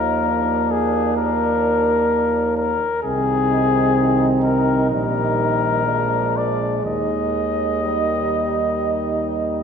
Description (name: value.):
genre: classical, brass quintet.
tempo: 60-65 BPM.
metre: 4/4.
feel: rubato.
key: Eb major.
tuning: A4 = 442 Hz.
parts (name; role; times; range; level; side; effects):
mellow trumpet; melody; 0.0-9.6 s; Ab4 to Eb5; -21 LUFS; left 5 dB; none.
warm flugelhorn; second line; 0.0-9.6 s; D4 to Eb4; -27 LUFS; right 6 dB; none.
clear French horn; accompaniment; 0.0-9.6 s; G3 to C4; -24 LUFS; left 1 dB; none.
clear trombone; accompaniment; 0.0-9.6 s; Eb3 to F3; -29 LUFS; right 4 dB; none.
warm tuba; bass; 0.0-9.6 s; Bb1 to Eb2; -24 LUFS; right 3 dB; none.
room: wet recital hall reverb, RT60 1.5 s.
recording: recorded in a church or concert hall.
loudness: -17 LUFS.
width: side -6 dB against mid.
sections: 0.0-9.6 A section.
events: none.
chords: 0.0 Bb/Eb; 3.0 Ab/C; 4.9 Eb/Bb; 5.9 Bb7; 6.8 Eb.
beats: 0.25 1.19 2.12 | 3.04 3.97 4.91 5.86 | 6.84 7.83 8.82.